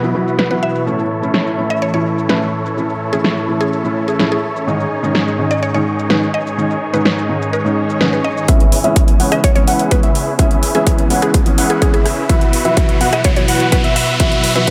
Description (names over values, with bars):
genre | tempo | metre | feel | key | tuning
EDM, festival progressive house | 126 BPM | 4/4 | straight | C# minor | A4 = 440 Hz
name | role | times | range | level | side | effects
mallet-like synth pluck | melody | 0.0-14.7 s | G#4 to E5 | -24 LUFS | equal | chorus, dub echo
felt-muted upright piano | accompaniment | 0.0-14.7 s | G#2 to E4 | -21 LUFS | equal | sidechain pumping
supersaw pad | sustained chords | 0.0-14.7 s | G#2 to E4 | -27 LUFS | equal | phaser, sidechain pumping, low-pass filter
big supersaw lead | riff | 0.0-14.7 s | B3 to F#5 | -24 LUFS | equal | sidechain pumping, low-pass filter, dub echo
big-room dance drum kit | drums | 0.0-14.7 s | hi-hat, rim click, shaker, snare drum | -22 LUFS | equal | low-pass filter on perc, low-pass filter on snare, low-pass filter on hats, low-pass filter on room
swell and riser | sound effects | 7.7-14.7 s | none | -27 LUFS | equal | none
plucky unison lead | arpeggios | 8.5-14.7 s | E5 to F#5 | -24 LUFS | equal | sidechain pumping, dub echo
electronic kick drum | drums | 8.5-14.7 s | none | -16 LUFS | equal | none
room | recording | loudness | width
light reverb | none | -15 LUFS | mono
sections
0.0-8.5 A section; 8.5-14.7 B section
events
swell 7.7-8.5; build-up 8.5-14.7; filter sweep on supersaw synth 8.5-14.7; filter sweep on digital synth lead 8.5-14.7; filter sweep 8.5-14.7; riser 11.4-14.7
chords
0.0 Esus2/B; 0.9 A; 4.7 G#sus4; 8.5 C#m7; 12.3 Esus2/B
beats
0.39 | 0.87 1.34 1.82 2.29 | 2.77 3.25 3.72 4.20 | 4.67 5.15 5.63 6.10 | 6.58 7.06 7.53 8.01 | 8.48 8.96 9.44 9.91 | 10.39 10.87 11.34 11.82 | 12.29 12.77 13.25 13.72 | 14.20 14.68